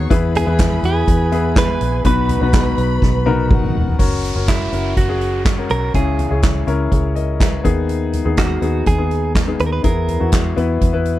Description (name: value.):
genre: piano-driven pop.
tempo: 123 BPM.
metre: 4/4.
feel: straight.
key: unclear.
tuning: A4 = 441 Hz.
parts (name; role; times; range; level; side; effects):
warm studio violin section; second line; 0.0-4.0 s; F#4 to B5; -30 LUFS; equal; none.
clear grand piano; accompaniment; 0.0-11.2 s; B2 to E5; -21 LUFS; left 6 dB; none.
vintage muted fingered electric bass; bass; 0.0-11.2 s; E1 to E2; -20 LUFS; equal; none.
soft-mallet drum kit; drums; 0.1-11.2 s; handclaps, hi-hat, kick drum, snare drum, toms; -18 LUFS; equal; none.
direct-recorded clean electric guitar; melody; 0.4-10.3 s; E4 to B4; -22 LUFS; right 4 dB; spring reverb, tape echo.
downlifter; sound effects; 4.0-7.9 s; none; -32 LUFS; right 1 dB; none.
room: little or no reverb.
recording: none.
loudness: -14 LUFS.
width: side -14 dB against mid.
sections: 0.0-4.0 A section; 4.0-11.2 B section.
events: drum fill 3.0-4.0.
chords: 0.1 E; 2.0 B; 4.0 F#; 5.9 C#m; 7.6 G#m/D#; 9.8 E.